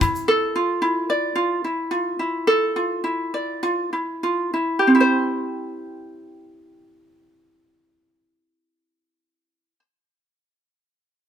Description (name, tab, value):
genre	pop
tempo	95-112 BPM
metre	4/4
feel	straight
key	C major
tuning	A4 = 439 Hz
part	ukulele	accompaniment	0.0-9.8 s	C4 to D5	-20 LUFS	right 1 dB	none
room	light reverb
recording	band playing live in one room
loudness	-19 LUFS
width	side -8 dB against mid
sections	0.0-4.8 A section; 4.8-9.9 B section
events	slowing down 0.3-4.8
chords	0.3 Dmadd9; 4.8 C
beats	| 0.28 0.82 1.36 1.91 | 2.47 3.04 3.62 4.22 | 4.84 5.48 6.11 6.74 | 7.37 8.01 8.64 9.27